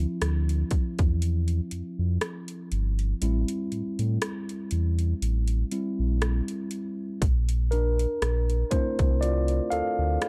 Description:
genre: contemporary R&B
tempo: 60 BPM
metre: 4/4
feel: swing 54% on 16ths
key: D minor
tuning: A4 = 445 Hz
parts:
  - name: mellow tine electric piano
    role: accompaniment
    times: 0.0-10.3 s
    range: F3 to F5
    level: -33 LUFS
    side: equal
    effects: none
  - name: sub bass with octave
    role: bass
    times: 0.0-10.2 s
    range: G1 to A2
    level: -27 LUFS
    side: equal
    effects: none
  - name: trap drum kit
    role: drums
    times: 0.2-10.3 s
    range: hi-hat, kick drum, rim click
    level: -30 LUFS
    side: equal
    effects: none
room: digital ambience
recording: dark, warm production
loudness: -27 LUFS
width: mono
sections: 0.0-10.3 A section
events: tine electric piano solo 0.0-10.3; kick muted 3.2-7.2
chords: 0.0 Dm7; 3.2 Am7; 7.2 Bbmaj7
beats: 0.22 1.22 2.22 | 3.22 4.22 5.22 6.22 | 7.22 8.22 9.22 10.22

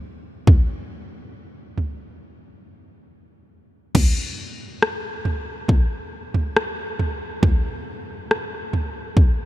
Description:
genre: pop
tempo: 69 BPM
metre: 4/4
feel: straight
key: none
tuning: none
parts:
  - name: pop drum kit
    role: drums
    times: 0.5-9.4 s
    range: crash cymbal, kick drum, rim click, toms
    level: -19 LUFS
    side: equal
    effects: none
room: light reverb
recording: none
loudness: -20 LUFS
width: side -15 dB against mid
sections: 0.0-4.0 A section; 4.0-9.5 B section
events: break 2.2-4.0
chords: none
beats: | 0.47 1.34 2.21 3.08 | 3.95 4.82 5.69 6.56 | 7.43 8.30 9.17

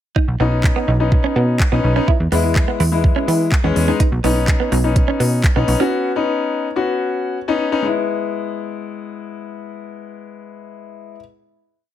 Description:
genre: dance-pop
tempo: 125 BPM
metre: 4/4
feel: straight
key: E major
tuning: A4 = 440 Hz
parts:
  - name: direct-recorded clean electric guitar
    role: riff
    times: 0.2-5.9 s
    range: B3 to E4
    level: -24 LUFS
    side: right 9 dB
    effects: lush chorus
  - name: smooth R&B drum kit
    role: drums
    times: 0.2-5.8 s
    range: handclaps, hi-hat, kick drum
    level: -18 LUFS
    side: right 1 dB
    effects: none
  - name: plucky analog bass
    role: bass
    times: 0.3-5.8 s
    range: B1 to E3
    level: -17 LUFS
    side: right 1 dB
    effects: sidechain pumping
  - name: clear grand piano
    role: accompaniment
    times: 0.4-11.2 s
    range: G#3 to F#4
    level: -20 LUFS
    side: left 5 dB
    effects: sidechain pumping
room: light reverb, digital ambience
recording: none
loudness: -15 LUFS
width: side -11 dB against mid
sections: 0.2-7.8 pre-chorus; 7.8-11.7 final chord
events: none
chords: 0.2 Badd9; 2.1 E; 4.0 Badd9; 7.8 E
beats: | 0.16 0.64 1.12 1.60 | 2.08 2.56 3.04 3.52 | 4.00 4.48 4.96 5.44 | 5.92 6.40 6.88 7.36 | 7.84 8.32 8.80 9.28 | 9.76 10.24 10.72

